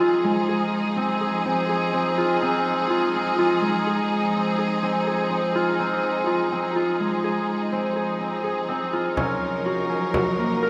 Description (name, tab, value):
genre	contemporary instrumental, chamber music in an uneven meter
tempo	124 BPM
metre	7/4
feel	straight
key	F phrygian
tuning	A4 = 440 Hz
part	rich studio string section	sustained chords	0.0-10.7 s	F3 to Bb4	-28 LUFS	equal	none
part	concert harp	arpeggios	0.0-10.7 s	Ab3 to Bb4	-25 LUFS	equal	none
part	frame drum	percussion	9.2-10.7 s	none	-33 LUFS	equal	none
room	wet concert hall reverb, RT60 2.6 s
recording	none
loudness	-23 LUFS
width	mono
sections	0.0-10.7 A section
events	none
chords	0.0 Fm7; 9.2 Gb6/F